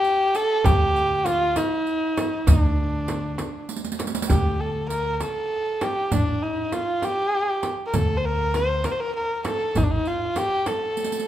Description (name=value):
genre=Persian modal ensemble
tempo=66 BPM (dotted quarters)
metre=6/8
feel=straight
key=D dastgah shur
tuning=A4 = 440 Hz
part: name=warm kamancheh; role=melody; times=0.0-11.3 s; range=D4 to C5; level=-23 LUFS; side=equal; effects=none
part: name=riq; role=percussion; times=0.0-11.3 s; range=none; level=-33 LUFS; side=right 7 dB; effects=none
part: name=tombak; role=percussion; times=0.1-11.0 s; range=none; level=-30 LUFS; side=left 1 dB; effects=none
part: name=frame drum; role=percussion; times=0.6-10.8 s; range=none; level=-29 LUFS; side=right 2 dB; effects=none
part: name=upright bass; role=bass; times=0.7-10.0 s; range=A1 to D2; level=-24 LUFS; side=equal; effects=none
room=moderate recital hall reverb, RT60 1.5 s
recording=minimal, uncompressed stereo recording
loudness=-21 LUFS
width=side -12 dB against mid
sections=0.0-4.3 A section; 4.3-11.3 B section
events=drum fill 3.7-4.3, 11.0-11.3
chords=none